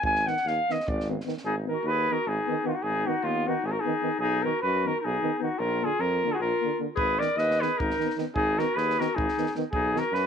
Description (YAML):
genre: balkan folk, Balkan brass band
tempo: 304 BPM (eighths)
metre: 7/8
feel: straight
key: Ab dorian sharp4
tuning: A4 = 444 Hz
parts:
  - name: warm flugelhorn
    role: melody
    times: 0.0-10.3 s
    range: F4 to Ab5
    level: -27 LUFS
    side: right 1 dB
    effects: none
  - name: clear tuba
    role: bass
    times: 0.0-10.3 s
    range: Ab1 to F#2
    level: -32 LUFS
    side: equal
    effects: none
  - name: compact cocktail drum kit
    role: percussion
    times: 0.0-1.4, 7.0-10.2 s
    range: kick drum, snare drum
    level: -36 LUFS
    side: right 1 dB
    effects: none
  - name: dark euphonium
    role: accompaniment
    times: 0.3-10.0 s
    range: Bb3 to Cb4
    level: -36 LUFS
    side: left 12 dB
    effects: none
  - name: mellow euphonium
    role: accompaniment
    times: 0.3-10.0 s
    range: D3 to Eb3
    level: -34 LUFS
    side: right 14 dB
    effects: none
  - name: warm clarinet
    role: second line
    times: 1.5-10.3 s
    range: Cb4 to Cb5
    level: -32 LUFS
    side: left 11 dB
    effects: slapback echo
room: small room ambience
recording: 1960s-style stereo with parts hard left and right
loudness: -24 LUFS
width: side -7 dB against mid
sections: 0.0-1.4 A section; 1.4-10.3 B section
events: flugelhorn solo 0.0-1.4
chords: 0.0 Abm; 4.2 B; 5.6 Bb; 7.0 Abm; 9.7 B